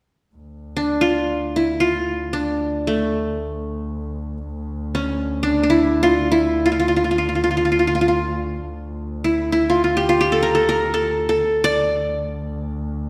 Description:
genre	arabic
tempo	free time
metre	none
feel	none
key	D maqam nahawand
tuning	A4 = 441 Hz
part	muted double bass	drone	0.4-13.1 s	D2	-30 LUFS	equal	none
part	qanun	melody	0.8-13.1 s	A3 to D5	-20 LUFS	equal	none
room	wet scoring stage reverb, RT60 1.6 s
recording	recorded in a church or concert hall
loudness	-20 LUFS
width	mono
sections	0.4-13.1 A section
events	none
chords	none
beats	free time

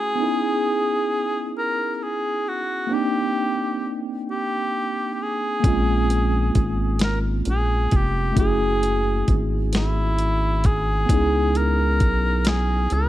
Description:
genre	slow six-eight R&B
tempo	44 BPM (dotted quarters)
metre	6/8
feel	straight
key	unclear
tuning	A4 = 440 Hz
part	mellow cor anglais	melody	0.0-13.1 s	Fb4 to Cb5	-25 LUFS	equal	none
part	tine electric piano	accompaniment	0.0-13.1 s	Ab3 to G5	-25 LUFS	equal	medium stereo tremolo
part	rubbery square bass	bass	5.6-13.1 s	F1 to Db2	-22 LUFS	equal	none
part	dusty soul sampler-style drum kit	drums	5.6-13.1 s	hi-hat, kick drum, snare drum	-21 LUFS	equal	none
room	light reverb, digital ambience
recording	none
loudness	-19 LUFS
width	side -14 dB against mid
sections	0.0-13.1 A section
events	none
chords	0.2 Dbm9; 2.9 Cm9; 5.6 Bbm9; 8.4 Gbm9; 11.1 Dbm9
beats	| 0.18 1.55 | 2.91 4.28 | 5.64 7.00 | 8.37 9.73 | 11.09 12.46

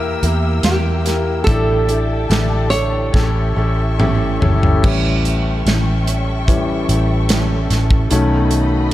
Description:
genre	pop ballad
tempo	73 BPM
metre	4/4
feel	straight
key	unclear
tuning	A4 = 440 Hz
part	nylon-string guitar	melody	0.0-4.4 s	G4 to C#5	-22 LUFS	right 3 dB	none
part	clear grand piano	accompaniment	0.0-8.9 s	A2 to Bb4	-21 LUFS	left 2 dB	none
part	warm studio string section	sustained chords	0.0-8.9 s	A4 to E6	-28 LUFS	left 2 dB	none
part	fingerpicked steel-string acoustic guitar	arpeggios	0.0-8.9 s	A2 to G4	-26 LUFS	right 4 dB	none
part	vintage muted fingered electric bass	bass	0.0-8.9 s	G1 to E2	-18 LUFS	equal	none
part	modern studio drum kit	drums	0.2-8.9 s	crash cymbal, hi-hat, kick drum, snare drum, toms	-18 LUFS	equal	none
room	light reverb, small room ambience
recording	dark, warm production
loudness	-14 LUFS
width	side -14 dB against mid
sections	0.0-4.8 A section; 4.8-8.9 B section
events	drum fill 3.1-4.8; grand piano solo 4.8-8.9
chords	0.0 Edim; 1.5 A7sus4; 3.1 A7; 8.1 B7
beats	0.64 | 1.47 2.30 3.14 3.99 | 4.84 5.66 6.48 7.30 | 8.11 8.92

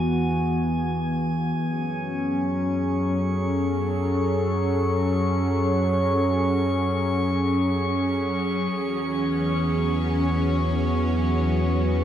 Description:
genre	ambient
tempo	free time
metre	none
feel	none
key	F# minor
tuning	A4 = 440 Hz
part	warbly tape-like pad	sustained chords	0.0-12.0 s	E3 to A4	-23 LUFS	equal	chorus, built-in reverb
part	warm sub bass	bass	0.0-12.0 s	E2 to F#2	-28 LUFS	equal	none
part	drifting glass-harmonics texture	texture	0.0-12.0 s	G#5 to C#6	-31 LUFS	left 1 dB	chorus, built-in reverb
part	bowed-like drone	drone	2.8-12.0 s	F#3 to C#4	-31 LUFS	left 1 dB	built-in reverb, phaser
room	moderate plate reverb, RT60 3.4 s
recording	dreamy mix soaked in reverb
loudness	-21 LUFS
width	side -10 dB against mid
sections	0.0-12.0 A section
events	none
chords	0.0 Eadd9; 1.6 F#m; 8.7 Eadd9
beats	free time

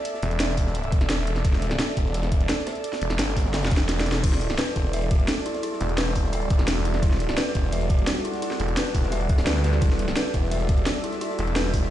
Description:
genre	dark technical drum and bass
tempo	172 BPM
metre	4/4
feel	straight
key	E minor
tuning	A4 = 440 Hz
part	crunchy breakbeat drum kit	drums	0.0-11.9 s	hi-hat, snare drum	-38 LUFS	equal	none
part	airy breathy pad	texture	0.0-11.9 s	A4 to E5	-32 LUFS	right 3 dB	chorus, sidechain pumping
part	drum and bass drum kit	drums	0.1-11.8 s	crash cymbal, hi-hat, ride cymbal, snare drum	-28 LUFS	equal	studio reverb
part	snarling distorted saw bass	bass	0.2-11.9 s	E1 to D2	-26 LUFS	equal	distortion, tube saturation, sidechain pumping
part	electronic kick drum	drums	0.6-11.8 s	none	-22 LUFS	equal	overdrive, studio reverb
part	deep dark ambient pad	sustained chords	4.7-11.9 s	G3 to F#5	-33 LUFS	right 1 dB	chorus, built-in reverb, sidechain pumping
part	dark detuned synth bell	arpeggios	4.2-11.8 s	E4 to E5	-32 LUFS	left 5 dB	chorus, sidechain pumping, tape echo
room	light reverb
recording	played on a big sound system in a bare room, stone room reverb, nothing above 10.5 kHz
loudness	-21 LUFS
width	side -12 dB against mid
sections	0.0-11.9 A section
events	drum fill 3.5-4.2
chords	0.0 Emadd9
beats	| 0.05 0.40 0.75 1.10 | 1.45 1.79 2.14 2.49 | 2.84 3.19 3.54 3.89 | 4.24 4.58 4.93 5.28 | 5.63 5.98 6.33 6.68 | 7.03 7.38 7.72 8.07 | 8.42 8.77 9.12 9.47 | 9.82 10.17 10.52 10.87 | 11.21 11.56

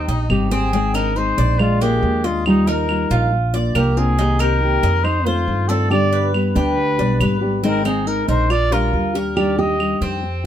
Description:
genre	latin, Cuban son and guajira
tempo	139 BPM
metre	4/4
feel	straight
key	C minor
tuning	A4 = 439 Hz
part	breathy trumpet	melody	0.0-10.0 s	Eb4 to Eb5	-22 LUFS	equal	none
part	nylon-string guitar	second line	0.0-10.0 s	G3 to G4	-23 LUFS	right 2 dB	none
part	Cuban tres	arpeggios	0.0-10.4 s	Ab3 to Eb5	-26 LUFS	right 1 dB	none
part	upright bass	bass	0.0-10.4 s	Ab1 to G2	-20 LUFS	equal	none
part	nylon-string guitar	accompaniment	0.3-10.5 s	C3 to Ab4	-22 LUFS	left 4 dB	none
part	claves	percussion	0.3-10.0 s	none	-28 LUFS	right 3 dB	none
room	light reverb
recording	none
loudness	-15 LUFS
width	side -10 dB against mid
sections	0.7-10.5 A section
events	none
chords	0.0 Cm; 0.7 Ab; 1.6 Bb7; 2.5 Ebadd9; 3.3 Bb; 4.2 Cm7; 5.0 F7; 5.9 G; 7.6 Ab; 8.5 Bb6; 9.4 Ebmaj7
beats	0.30 | 0.73 1.16 1.59 2.02 | 2.46 2.89 3.32 3.75 | 4.18 4.62 5.05 5.48 | 5.91 6.34 6.77 7.21 | 7.64 8.07 8.50 8.93 | 9.37 9.80 10.23

